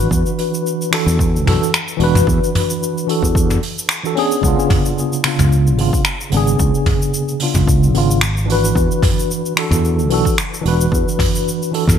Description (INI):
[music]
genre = sunset chillout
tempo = 111 BPM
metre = 4/4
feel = swing 54% on 16ths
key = unclear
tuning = A4 = 439 Hz
[part]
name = mellow tine electric piano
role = accompaniment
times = 0.0-12.0 s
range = C#3 to B4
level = -17 LUFS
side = equal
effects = medium stereo tremolo, auto-pan, digital delay
[part]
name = sustaining fretless electric bass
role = bass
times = 0.0-12.0 s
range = E1 to E2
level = -16 LUFS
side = equal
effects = none
[part]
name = soft brush drum kit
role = drums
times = 0.0-12.0 s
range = finger snaps, hi-hat, shaker, toms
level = -20 LUFS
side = left 1 dB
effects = none
[part]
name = electronic kick drum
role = drums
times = 0.1-12.0 s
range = none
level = -19 LUFS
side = equal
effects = overdrive
[sound]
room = light reverb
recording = bright 1980s-style digital production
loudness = -14 LUFS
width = side -8 dB against mid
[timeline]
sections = 0.0-4.4 A section; 4.4-12.0 A section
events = none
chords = 0.1 E9sus4; 4.4 C#7b9; 8.8 E9sus4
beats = | 0.11 0.65 1.19 1.73 | 2.27 2.81 3.35 3.90 | 4.44 4.98 5.52 6.06 | 6.60 7.14 7.68 8.22 | 8.76 9.30 9.84 10.38 | 10.92 11.46